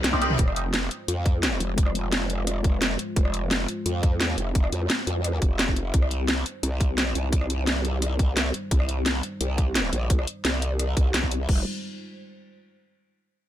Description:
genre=dark technical drum and bass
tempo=173 BPM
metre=4/4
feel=straight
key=F minor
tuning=A4 = 441 Hz
part: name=dark analog pad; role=sustained chords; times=0.0-11.6 s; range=G3 to C5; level=-37 LUFS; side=equal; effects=chorus, sidechain pumping
part: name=growl bass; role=bass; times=0.0-11.6 s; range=F1 to F2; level=-26 LUFS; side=equal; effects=chorus, tube saturation
part: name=drum and bass drum kit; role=drums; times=0.0-11.6 s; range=crash cymbal, hi-hat, rim click, snare drum, toms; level=-26 LUFS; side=equal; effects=none
part: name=electronic kick drum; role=drums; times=0.1-11.6 s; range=none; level=-22 LUFS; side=equal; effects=overdrive
room=digital ambience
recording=none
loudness=-22 LUFS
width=side -12 dB against mid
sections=0.0-11.5 A section; 11.5-12.9 B section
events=drum fill 0.0-0.4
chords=0.4 Fm; 5.9 Cm; 11.5 Fm

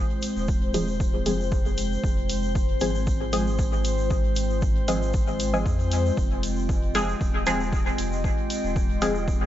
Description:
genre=dub techno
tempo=116 BPM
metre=4/4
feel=swing 54% on 16ths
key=F minor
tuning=A4 = 439 Hz
part: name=warbly tape-like pad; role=sustained chords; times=0.0-9.5 s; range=Ab3 to Eb5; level=-30 LUFS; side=left 2 dB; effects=chorus, built-in reverb, sidechain pumping
part: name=pure sine sub bass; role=bass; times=0.0-9.5 s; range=Eb1 to F2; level=-28 LUFS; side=equal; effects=sidechain pumping
part: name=drifting glass-harmonics texture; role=texture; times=0.0-9.5 s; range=C4 to C5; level=-37 LUFS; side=equal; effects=chorus, built-in reverb, sidechain pumping
part: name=electronic hi-hat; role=drums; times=0.2-9.1 s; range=none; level=-34 LUFS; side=left 1 dB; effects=none
part: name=tube shaker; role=percussion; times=0.2-9.4 s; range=none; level=-40 LUFS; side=right 3 dB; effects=dub echo
part: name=electronic kick drum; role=drums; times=0.5-9.4 s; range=none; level=-25 LUFS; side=equal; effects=none
part: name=filtered dub chord stab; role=stabs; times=0.7-9.1 s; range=F3 to Ab4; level=-28 LUFS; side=equal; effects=chorus, phaser, sidechain pumping, dub echo
room=light reverb, digital ambience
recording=echo-heavy mix, nothing above 7.7 kHz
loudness=-22 LUFS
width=side -12 dB against mid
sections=0.0-9.5 A section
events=none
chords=0.0 Fm

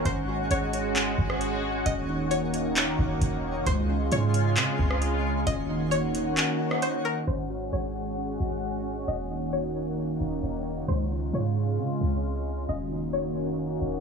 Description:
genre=hip hop, atmospheric cloud-rap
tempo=133 BPM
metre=4/4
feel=half-time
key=Eb dorian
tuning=A4 = 440 Hz
part: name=string-like resonator pluck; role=melody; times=0.0-13.6 s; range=Bb4 to Eb5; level=-34 LUFS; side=left 3 dB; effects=chorus, phaser, tape echo
part: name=sweeping resonant pad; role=sustained chords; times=0.0-14.0 s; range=Db3 to Gb4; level=-29 LUFS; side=right 1 dB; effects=chorus, sidechain pumping
part: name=muted felt-like synth keys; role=arpeggios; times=0.0-14.0 s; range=Ab3 to Ab4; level=-36 LUFS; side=left 4 dB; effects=chorus, tape echo
part: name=warm 808-style bass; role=bass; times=0.0-14.0 s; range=Eb1 to Db3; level=-30 LUFS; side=right 2 dB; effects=none
part: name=twinkling granular texture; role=texture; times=0.0-14.0 s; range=Db4 to C6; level=-40 LUFS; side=left 1 dB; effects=built-in reverb
part: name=booming analog drum machine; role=drums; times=0.1-6.9 s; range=handclaps, hi-hat, kick drum, rim click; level=-28 LUFS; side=equal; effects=none
room=light reverb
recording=low-pass filter, small room ambience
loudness=-25 LUFS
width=side -5 dB against mid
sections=0.0-7.3 A section; 7.3-14.0 B section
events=kick muted 6.4-7.3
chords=0.1 Ab7sus4; 1.9 Ebm7; 3.7 Dbmaj7; 5.5 Ebm7; 7.3 Ab7sus4; 9.1 Ebm7; 10.9 Dbmaj7; 12.7 Ebm7

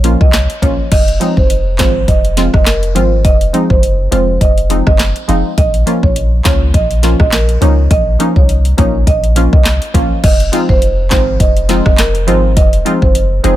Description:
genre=dancehall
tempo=103 BPM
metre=4/4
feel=swing 56% on 16ths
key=unclear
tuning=A4 = 439 Hz
part: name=glassy wavetable pluck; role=accompaniment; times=0.0-13.6 s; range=F3 to Ab4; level=-17 LUFS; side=equal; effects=chorus
part: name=punchy sub bass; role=bass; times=0.0-13.6 s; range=F1 to Db2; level=-13 LUFS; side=equal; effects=none
part: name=afro-pop drum kit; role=drums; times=0.0-13.6 s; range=crash cymbal, handclaps, hi-hat, kick drum, rim click, snare drum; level=-12 LUFS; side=equal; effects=none
part: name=marimba with medium mallets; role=melody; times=0.2-13.6 s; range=Bb4 to F5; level=-17 LUFS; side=right 3 dB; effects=ping-pong delay
room=little or no reverb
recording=none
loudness=-9 LUFS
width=side -14 dB against mid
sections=0.9-10.2 A section; 10.2-13.6 B section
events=none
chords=0.0 Bbm; 0.9 Fm7; 5.6 Bbm; 10.2 Fm7

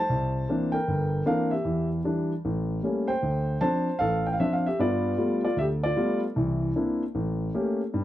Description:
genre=solo jazz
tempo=153 BPM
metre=4/4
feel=swing 65% on 8ths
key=C major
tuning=A4 = 442 Hz
part: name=dark concert grand piano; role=solo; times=0.0-8.0 s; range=G1 to A5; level=-24 LUFS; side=equal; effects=none
room=little or no reverb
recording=dry, close 1970s-style studio recording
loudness=-24 LUFS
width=side -13 dB against mid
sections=0.0-8.0 A section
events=none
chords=0.1 C9; 1.7 Em7; 2.4 A7b9; 3.2 Dm7; 4.8 G9; 6.4 C9; 7.1 A7b9

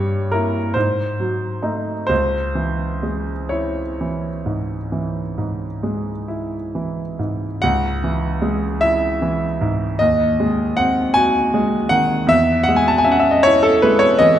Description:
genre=classical, romantic nocturne for solo piano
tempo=42-54 BPM (dotted quarters)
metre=12/8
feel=rubato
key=C# minor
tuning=A4 = 440 Hz
part: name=clear concert grand piano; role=solo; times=0.0-14.4 s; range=C#2 to A5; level=-16 LUFS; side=equal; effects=none
room=wet recital hall reverb, RT60 1.6 s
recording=none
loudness=-16 LUFS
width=side -10 dB against mid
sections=0.0-7.6 A section; 7.6-14.4 A section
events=none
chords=0.0 Gdim7; 0.8 G#7b9; 2.1 C#m; 10.0 G#7/D#; 12.3 C#m/E

